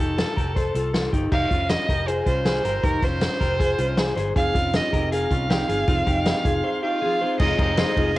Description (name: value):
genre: jangly indie pop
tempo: 158 BPM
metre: 4/4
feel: straight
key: unclear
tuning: A4 = 440 Hz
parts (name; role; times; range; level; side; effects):
- warm violin; melody; 0.0-8.2 s; A4 to F5; -25 LUFS; right 2 dB; cassette tape, tape echo
- electric guitar through a small old amp; arpeggios; 0.0-8.2 s; C4 to C5; -26 LUFS; left 2 dB; cassette tape
- vintage muted fingered electric bass; bass; 0.0-8.2 s; F1 to C2; -28 LUFS; equal; none
- vintage drum kit; drums; 0.0-8.2 s; crash cymbal, hi-hat, kick drum, ride cymbal, snare drum; -24 LUFS; equal; cassette tape
- fingerpicked plugged-in steel-string acoustic guitar; accompaniment; 4.4-8.2 s; F3 to Ab4; -30 LUFS; right 4 dB; cassette tape
- warm symphonic violin section; second line; 6.8-8.2 s; Eb4 to F4; -33 LUFS; right 1 dB; none
- overdriven combo organ; accompaniment; 7.4-8.2 s; Ab3 to F4; -29 LUFS; left 3 dB; cassette tape
room: light reverb, small room ambience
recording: home recording on cassette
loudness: -20 LUFS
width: side -17 dB against mid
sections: 0.0-1.3 A section; 1.3-7.4 B section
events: break 6.6-7.4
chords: 0.0 F; 1.3 Fm7